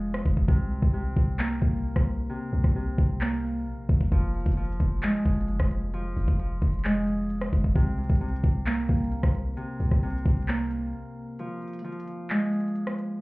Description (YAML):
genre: hip hop, trap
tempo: 132 BPM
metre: 4/4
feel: half-time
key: unclear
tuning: A4 = 440 Hz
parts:
  - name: Celtic harp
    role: arpeggios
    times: 0.0-13.2 s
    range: C3 to Bb3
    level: -29 LUFS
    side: equal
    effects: tape echo
  - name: warm 808-style bass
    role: bass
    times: 0.0-10.9 s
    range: F1 to C2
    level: -28 LUFS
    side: equal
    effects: none
  - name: trap drum kit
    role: drums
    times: 0.1-13.1 s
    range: handclaps, hi-hat, kick drum, rim click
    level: -25 LUFS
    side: equal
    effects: overdrive
room: light reverb, digital ambience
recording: heard muffled through a wall, club reverb, EQ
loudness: -24 LUFS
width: side -22 dB against mid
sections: 0.0-13.2 A section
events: break 0.0-4.1, 10.9-11.4, 11.4-13.2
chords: 0.5 Bbsus2; 4.1 Fm; 7.8 Bbsus2/C; 11.4 Fm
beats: 0.03 | 0.48 0.94 1.39 1.85 | 2.30 2.76 3.21 3.67 | 4.12 4.57 5.03 5.48 | 5.94 6.39 6.85 7.30 | 7.76 8.21 8.66 9.12 | 9.57 10.03 10.48 10.94 | 11.39 11.85 12.30 12.76 | 13.21